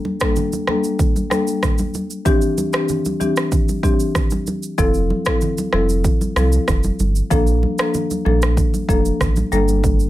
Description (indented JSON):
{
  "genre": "afrobeats",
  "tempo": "95 BPM",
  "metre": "4/4",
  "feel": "straight",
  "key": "F major",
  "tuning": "A4 = 440 Hz",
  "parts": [
    { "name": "congas", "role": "percussion", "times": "0.0-10.0 s", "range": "none", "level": "-26 LUFS", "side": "right 3 dB", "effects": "none" },
    { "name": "marimba with medium mallets", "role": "accompaniment", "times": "0.2-9.8 s", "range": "E3 to A4", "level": "-20 LUFS", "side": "left 2 dB", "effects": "none" },
    { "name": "afro-pop drum kit", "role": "drums", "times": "0.2-10.1 s", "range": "kick drum, rim click, shaker", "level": "-20 LUFS", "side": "right 1 dB", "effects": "none" },
    { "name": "warm sub bass", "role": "bass", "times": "4.8-10.1 s", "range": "F1 to C2", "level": "-18 LUFS", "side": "equal", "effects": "none" }
  ],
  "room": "light reverb",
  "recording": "none",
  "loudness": "-16 LUFS",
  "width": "side -15 dB against mid",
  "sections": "0.0-10.1 A section",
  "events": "none",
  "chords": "0.0 Gmadd9; 2.3 Cadd9; 4.8 Fmaj7; 7.3 Bbmaj7; 9.5 Gmadd9",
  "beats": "0.36 0.99 1.63 | 2.26 2.89 3.52 4.15 | 4.78 5.42 6.05 6.68 | 7.31 7.94 8.57 9.21 | 9.84"
}